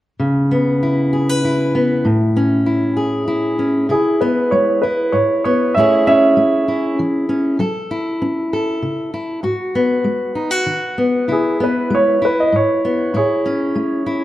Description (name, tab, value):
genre	acoustic folk-pop ballad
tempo	98 BPM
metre	3/4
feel	straight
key	C# minor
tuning	A4 = 440 Hz
part	fingerpicked steel-string acoustic guitar	accompaniment	0.2-14.2 s	G#2 to B4	-16 LUFS	left 1 dB	none
part	warm concert grand piano	melody	3.9-7.0, 11.3-14.2 s	E4 to E5	-15 LUFS	right 2 dB	none
room	moderate large studio reverb, RT60 1.5 s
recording	lossy compression artefacts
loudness	-14 LUFS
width	side -14 dB against mid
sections	0.2-3.9 A section; 3.9-14.2 B section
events	none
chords	0.2 C#m7; 2.1 Amaj7; 3.9 C#m7; 5.8 Amaj7; 7.6 F#m7; 9.4 G#m7; 11.3 C#m7; 13.2 Amaj7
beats	| 0.20 0.82 1.44 | 2.05 2.66 3.28 | 3.90 4.52 5.14 | 5.76 6.38 7.00 | 7.61 8.22 8.83 | 9.45 10.06 10.68 | 11.30 11.92 12.54 | 13.16 13.77